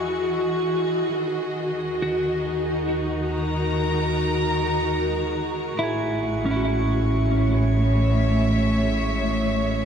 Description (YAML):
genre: ambient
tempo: free time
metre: none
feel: none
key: unclear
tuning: A4 = 440 Hz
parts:
  - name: warm studio string section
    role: sustained chords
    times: 0.0-9.8 s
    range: A2 to A#5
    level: -22 LUFS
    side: equal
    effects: shimmer reverb
  - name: round analog bass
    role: bass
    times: 0.0-9.8 s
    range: A1 to E2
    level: -29 LUFS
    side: equal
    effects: none
  - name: drifting glass-harmonics texture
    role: texture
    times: 0.0-9.8 s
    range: C#6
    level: -37 LUFS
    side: right 1 dB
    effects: chorus, built-in reverb, shimmer reverb
  - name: bowed-like drone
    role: drone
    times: 4.5-9.8 s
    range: G#3 to G#4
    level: -39 LUFS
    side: left 1 dB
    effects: none
  - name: clean electric guitar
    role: arpeggios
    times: 2.0-9.8 s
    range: C#4 to G#4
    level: -27 LUFS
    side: right 1 dB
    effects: shimmer reverb, diffuse ambient delay
room: wet cathedral reverb, RT60 5.9 s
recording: none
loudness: -20 LUFS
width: side -7 dB against mid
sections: 0.0-1.2 A section; 1.2-9.8 B section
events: fade-in on synth texture 1.2-9.8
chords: 0.0 Emaj7; 1.2 D#m; 5.8 A